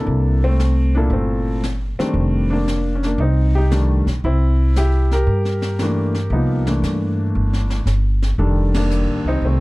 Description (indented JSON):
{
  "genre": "jazz piano trio",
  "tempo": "116 BPM",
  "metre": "4/4",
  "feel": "swing 68% on 8ths",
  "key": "C mixolydian",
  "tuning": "A4 = 440 Hz",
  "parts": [
    { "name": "warm grand piano", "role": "melody", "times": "0.0-9.6 s", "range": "Bb2 to Bb4", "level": "-21 LUFS", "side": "left 1 dB", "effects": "none" },
    { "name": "upright bass", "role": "bass", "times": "0.0-9.6 s", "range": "F1 to G2", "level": "-17 LUFS", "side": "equal", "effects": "none" },
    { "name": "jazz brush drum kit", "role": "drums", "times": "0.1-9.6 s", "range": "brushed snare drum, hi-hat, ride cymbal, snare drum", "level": "-31 LUFS", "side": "left 1 dB", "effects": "none" }
  ],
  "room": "little or no reverb",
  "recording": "dark, warm production",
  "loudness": "-16 LUFS",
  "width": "side -21 dB against mid",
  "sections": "0.1-9.6 A section",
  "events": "band accent 8.7",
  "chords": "0.1 C13; 2.2 F13; 4.2 C13; 8.4 F13",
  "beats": "| 0.08 0.60 1.12 1.64 | 2.16 2.68 3.20 3.72 | 4.24 4.76 5.28 5.80 | 6.32 6.83 7.35 7.87 | 8.39 8.91 9.43"
}